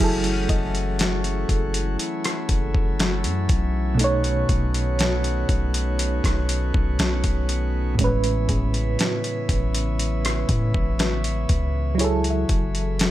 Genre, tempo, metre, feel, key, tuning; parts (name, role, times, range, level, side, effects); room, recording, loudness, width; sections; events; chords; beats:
contemporary R&B; 60 BPM; 4/4; straight; F# dorian; A4 = 440 Hz
mellow FM electric piano; accompaniment; 0.0-13.1 s; A2 to C#5; -26 LUFS; right 2 dB; chorus, tremolo
pipe organ, principal chorus; sustained chords; 0.0-13.1 s; C#3 to F#4; -29 LUFS; equal
long sustained 808-style bass; bass; 0.0-13.1 s; F#1 to A2; -24 LUFS; equal
dusty soul sampler-style drum kit; drums; 0.2-13.1 s; hi-hat, kick drum, rim click, snare drum; -23 LUFS; equal; overdrive
soft round pluck; texture; 0.5-13.1 s; G#4 to E5; -37 LUFS; left 4 dB; chorus, tape echo
digital ambience; -20 LUFS; side -14 dB against mid
0.0-13.1 A section
0.0 F#m9; 4.0 B9; 8.0 Amaj9; 12.0 F#m9
0.99 1.99 2.99 | 3.99 4.99 5.99 6.99 | 7.99 8.99 9.99 10.99 | 11.99 12.99